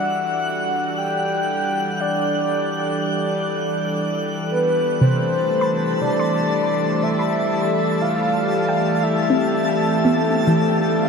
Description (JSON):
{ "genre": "ambient", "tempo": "60 BPM", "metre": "3/4", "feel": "straight", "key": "unclear", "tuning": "A4 = 440 Hz", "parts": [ { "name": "breathy flute-like synth lead", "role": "melody", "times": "0.0-11.1 s", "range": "B4 to G5", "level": "-22 LUFS", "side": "left 1 dB", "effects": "analog chorus, ping-pong delay" }, { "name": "airy breathy pad", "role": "sustained chords", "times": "0.0-11.1 s", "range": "E3 to D5", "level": "-23 LUFS", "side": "equal", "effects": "chorus" }, { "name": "pedal harmonium", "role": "drone", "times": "0.0-11.1 s", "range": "G3", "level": "-29 LUFS", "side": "right 1 dB", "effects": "none" }, { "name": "twinkling granular texture", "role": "texture", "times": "0.0-11.1 s", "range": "A5 to F#6", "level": "-29 LUFS", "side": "equal", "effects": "built-in reverb" }, { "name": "soft round pluck", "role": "arpeggios", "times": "5.0-11.1 s", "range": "C3 to C6", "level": "-24 LUFS", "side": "equal", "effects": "wide subtle chorus, ping-pong delay" } ], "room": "wet shimmer reverb, RT60 8.5 s", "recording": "dark, warm production", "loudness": "-18 LUFS", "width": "side -5 dB against mid", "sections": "0.0-11.1 A section", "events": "fade-in on analog synth pad 0.0-11.1", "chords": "0.0 G5; 5.0 Fmaj7" }